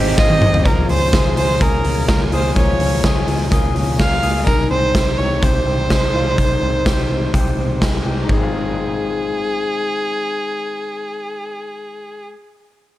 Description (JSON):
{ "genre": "jangly indie pop", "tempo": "126 BPM", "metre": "4/4", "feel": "straight", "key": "Ab major", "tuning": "A4 = 440 Hz", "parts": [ { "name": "bright trumpet", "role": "second line", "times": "0.0-0.6 s", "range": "G4 to Ab4", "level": "-30 LUFS", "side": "right 4 dB", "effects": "none" }, { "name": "picked twelve-string acoustic guitar", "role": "accompaniment", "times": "0.0-4.5 s", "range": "Db3 to C5", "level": "-27 LUFS", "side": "right 5 dB", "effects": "none" }, { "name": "warbly lo-fi synth keys", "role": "accompaniment", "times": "0.0-0.7 s", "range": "none", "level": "barely audible", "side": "none", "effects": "none" }, { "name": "electric guitar through a small old amp", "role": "arpeggios", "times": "0.0-12.4 s", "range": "Eb3 to Ab4", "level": "-24 LUFS", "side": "left 5 dB", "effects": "slapback echo" }, { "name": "vintage muted picked electric bass", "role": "bass", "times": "0.0-12.3 s", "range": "Ab1 to Db2", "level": "-21 LUFS", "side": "equal", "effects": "none" }, { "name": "warm violin", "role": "melody", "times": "0.2-12.2 s", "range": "Ab4 to F5", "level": "-21 LUFS", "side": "right 1 dB", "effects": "none" }, { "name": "raw garage drum kit", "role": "drums", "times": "0.2-8.4 s", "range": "hi-hat, kick drum, snare drum, toms", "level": "-18 LUFS", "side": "equal", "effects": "none" } ], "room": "small room ambience", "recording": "none", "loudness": "-15 LUFS", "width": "side -14 dB against mid", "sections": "0.7-8.3 A section; 8.3-12.1 B section", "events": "drum fill 0.2-0.7", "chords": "0.0 Abmaj7; 0.7 Db6; 4.5 Abmaj7/C; 8.3 Ab6", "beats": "0.18 | 0.66 1.13 1.61 2.08 | 2.56 3.04 3.52 3.99 | 4.47 4.95 5.43 5.90 | 6.38 6.86 7.33 7.81 | 8.29 8.77 9.24 9.72 | 10.20 10.68 11.15 11.63" }